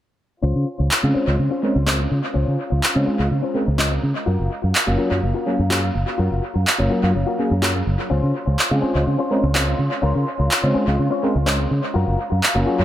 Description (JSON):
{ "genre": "filtered disco house", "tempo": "125 BPM", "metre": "4/4", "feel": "straight", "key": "Db major", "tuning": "A4 = 444 Hz", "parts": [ { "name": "rich chamber violin section", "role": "sustained chords", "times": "0.4-12.8 s", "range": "Db4 to C6", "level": "-31 LUFS", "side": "equal", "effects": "low-pass filter" }, { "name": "direct-recorded clean electric guitar", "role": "riff", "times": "0.4-12.8 s", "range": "Db4 to Eb5", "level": "-27 LUFS", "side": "left 5 dB", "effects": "low-pass filter, analog delay" }, { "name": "fingered electric bass", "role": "bass", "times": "0.4-12.8 s", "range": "Gb1 to Db3", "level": "-20 LUFS", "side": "equal", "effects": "low-pass filter" }, { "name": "electronic handclaps", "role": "drums", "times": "0.9-12.5 s", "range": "none", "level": "-23 LUFS", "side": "equal", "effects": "analog delay" }, { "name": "bell-like tine electric piano", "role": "accompaniment", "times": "1.0-12.8 s", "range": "Gb3 to Bb4", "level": "-23 LUFS", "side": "equal", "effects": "phaser, low-pass filter, analog delay" } ], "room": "moderate spring reverb, RT60 2.3 s", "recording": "echo-heavy mix", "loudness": "-17 LUFS", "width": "side -12 dB against mid", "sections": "0.4-12.8 A section", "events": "filter sweep 0.4-12.8", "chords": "0.4 Dbmaj7; 4.3 Gbmaj7; 8.1 Dbmaj7; 12.0 Gbmaj7" }